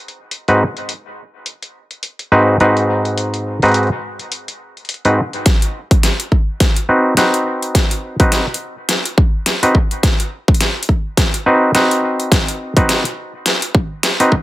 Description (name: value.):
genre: glitch hop.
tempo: 105 BPM.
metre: 4/4.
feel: swing 57% on 16ths.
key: unclear.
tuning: A4 = 440 Hz.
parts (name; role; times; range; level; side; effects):
dubstep drum kit; drums; 0.1-14.3 s; hi-hat, snare drum; -18 LUFS; equal; overdrive, high-pass filter on hats, low-pass filter on hats, high-pass filter on snare, low-pass filter on snare, high-pass filter on room, low-pass filter on room.
overdriven clav; stabs; 0.5-14.3 s; G#2 to B4; -14 LUFS; equal; vintage 12-bit sampler grit, sidechain pumping, low-pass filter, dub echo.
electronic kick drum; drums; 5.5-14.4 s; none; -13 LUFS; equal; overdrive.
room: moderate studio reverb, RT60 0.6 s.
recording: high-pass filter.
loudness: -13 LUFS.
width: side -16 dB against mid.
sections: 0.0-5.5 A section; 5.5-14.4 B section.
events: build-up 5.5-14.4; drum fill 5.5-14.4; filter sweep 5.5-14.4.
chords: 0.0 G#7#9; 5.5 Cdim.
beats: 0.32 | 0.89 1.46 2.04 2.61 | 3.18 3.75 4.32 4.89 | 5.46 6.04 6.61 7.18 | 7.75 8.32 8.89 9.46 | 10.04 10.61 11.18 11.75 | 12.32 12.89 13.46 14.04.